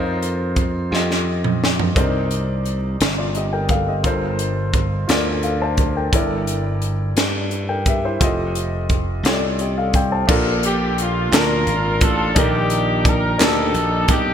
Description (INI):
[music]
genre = slow gospel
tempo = 58 BPM (dotted quarters)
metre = 6/8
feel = straight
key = Bb major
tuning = A4 = 443 Hz
[part]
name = warm concert grand piano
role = accompaniment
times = 0.0-14.3 s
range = G2 to A5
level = -23 LUFS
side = left 1 dB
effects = none
[part]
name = glassy slap bass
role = bass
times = 0.0-14.3 s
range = F1 to G2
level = -22 LUFS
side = equal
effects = none
[part]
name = crisp fusion drum kit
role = drums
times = 0.2-14.2 s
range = crash cymbal, hi-hat, kick drum, snare drum, toms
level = -20 LUFS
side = equal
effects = none
[part]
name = warm horn section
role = melody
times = 10.7-14.3 s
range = D4 to Bb4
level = -20 LUFS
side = equal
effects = none
[part]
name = group handclap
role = percussion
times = 11.3-13.7 s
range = none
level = -29 LUFS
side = right 5 dB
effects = none
[sound]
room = light reverb, small room ambience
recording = bright 1980s-style digital production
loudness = -17 LUFS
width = side -8 dB against mid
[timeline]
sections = 0.0-10.3 A section; 10.3-14.3 B section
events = drum fill 0.9-2.0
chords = 0.0 F7sus4; 0.9 F9; 2.0 Cm9; 6.1 Gm69; 8.2 F9; 10.3 Bbmaj7; 12.4 Ebmaj7/Bb